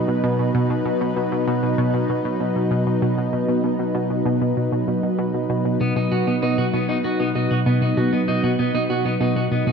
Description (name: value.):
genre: ambient.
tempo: 97 BPM.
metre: 4/4.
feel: straight.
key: B major.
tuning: A4 = 440 Hz.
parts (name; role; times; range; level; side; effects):
lush unison pad; sustained chords; 0.0-9.7 s; F#3 to B4; -22 LUFS; equal; chorus.
tight sequenced synth; riff; 0.0-9.7 s; B2; -22 LUFS; equal; chorus, ping-pong delay.
clean electric guitar; arpeggios; 5.8-9.7 s; B3 to F#4; -24 LUFS; right 2 dB; auto-pan, ping-pong delay.
room: wet plate reverb, RT60 2.8 s.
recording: dreamy mix soaked in reverb, cassette tape.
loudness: -18 LUFS.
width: side -6 dB against mid.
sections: 0.0-9.7 A section.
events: none.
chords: 0.0 B.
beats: 0.24 | 0.86 1.48 2.10 2.71 | 3.33 3.95 4.57 5.19 | 5.81 6.42 7.04 7.66 | 8.28 8.90 9.52.